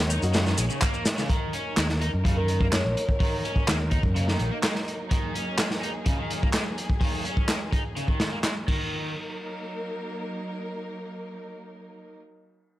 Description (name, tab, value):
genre	breakbeat, breaks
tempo	126 BPM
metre	4/4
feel	straight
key	Eb minor pentatonic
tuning	A4 = 440 Hz
part	warm symphonic string section	sustained chords	0.0-12.2 s	Gb3 to Db5	-35 LUFS	equal	sidechain pumping
part	fingered electric bass	bass	0.0-4.5 s	Bb1 to Gb2	-25 LUFS	equal	tube saturation
part	crunchy overdriven guitar	riff	0.1-9.1 s	Db3 to Eb4	-33 LUFS	equal	tube saturation, low-pass filter, analog delay
part	garage drum kit	drums	0.1-8.5 s	handclaps, hi-hat, shaker	-31 LUFS	equal	overdrive
part	crunchy breakbeat drum kit	drums	0.2-8.8 s	crash cymbal, hi-hat, kick drum, snare drum	-26 LUFS	equal	none
part	kalimba	melody	2.4-2.9 s	Bb4 to Db5	-34 LUFS	equal	AM radio sound, vintage 12-bit sampler grit, analog delay
room	small room ambience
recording	dry, gritty hardware recording, transformer saturation, cassette tape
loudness	-24 LUFS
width	side -15 dB against mid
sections	0.0-1.3 A section; 1.3-8.9 B section; 8.9-12.7 C section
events	drop 0.0-1.3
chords	0.0 Ebm